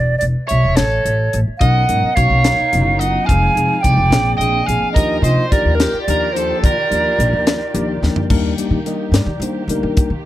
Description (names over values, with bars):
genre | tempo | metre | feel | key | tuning
electric jazz fusion | 72 BPM (dotted quarters) | 6/8 | straight | unclear | A4 = 441 Hz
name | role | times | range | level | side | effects
hollow concert flute | melody | 0.0-8.0 s | Bb4 to Ab5 | -18 LUFS | right 3 dB | none
upright bass | bass | 0.0-10.3 s | E1 to Eb3 | -18 LUFS | equal | none
tight funk drum kit | drums | 0.2-10.1 s | crash cymbal, hi-hat, kick drum, snare drum, toms | -18 LUFS | left 1 dB | none
crunchy overdriven guitar | second line | 0.5-8.0 s | G4 to F5 | -24 LUFS | left 1 dB | none
tine electric piano | accompaniment | 1.6-10.1 s | F3 to Eb5 | -22 LUFS | left 3 dB | phaser
dark studio string section | sustained chords | 1.6-10.3 s | Eb3 to D5 | -29 LUFS | right 1 dB | none
room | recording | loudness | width
little or no reverb | none | -13 LUFS | side -14 dB against mid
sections
0.0-8.3 A section; 8.3-10.3 B section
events
drum fill 8.0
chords
0.0 E5; 0.8 A; 1.6 Bmaj9; 3.3 Fm7; 4.1 Bb9; 5.0 Ebmaj9; 8.3 Ebmaj7